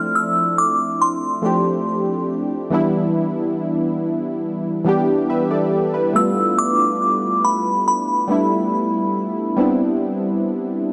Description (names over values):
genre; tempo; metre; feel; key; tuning
R&B; 70 BPM; 4/4; straight; unclear; A4 = 439 Hz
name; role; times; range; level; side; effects
glassy synth bell; melody; 0.0-9.1 s; B5 to F6; -21 LUFS; equal; chorus, digital delay
warm analog keys; accompaniment; 0.0-10.9 s; E3 to E5; -21 LUFS; equal; chorus
room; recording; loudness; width
moderate plate reverb, RT60 3.0 s; none; -19 LUFS; mono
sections
0.0-10.9 A section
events
none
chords
0.0 Dm7; 2.7 Em7; 6.1 G7; 9.6 Cmaj7